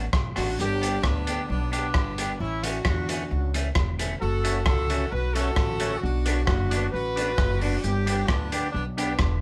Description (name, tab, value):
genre	ska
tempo	132 BPM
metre	4/4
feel	straight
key	B minor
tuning	A4 = 440 Hz
part	electric guitar at the edge of break-up	accompaniment	0.0-9.1 s	E3 to G4	-35 LUFS	equal	tape echo
part	upright bass	bass	0.0-9.4 s	E1 to E2	-30 LUFS	equal	none
part	crunchy breakbeat drum kit	drums	0.1-9.3 s	hi-hat, kick drum, rim click	-30 LUFS	equal	none
part	warm horn section	melody	0.4-9.4 s	B3 to B4	-31 LUFS	equal	none
part	percussive tonewheel organ	stabs	4.4-9.1 s	C#4 to D5	-35 LUFS	equal	overdrive, chorus vibrato, slow rotary speaker
room	light reverb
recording	band playing live in one room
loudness	-26 LUFS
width	mono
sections	0.0-9.4 A section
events	none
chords	0.0 Bm; 0.6 G; 2.4 A; 4.2 F#m; 6.0 Bm; 7.8 G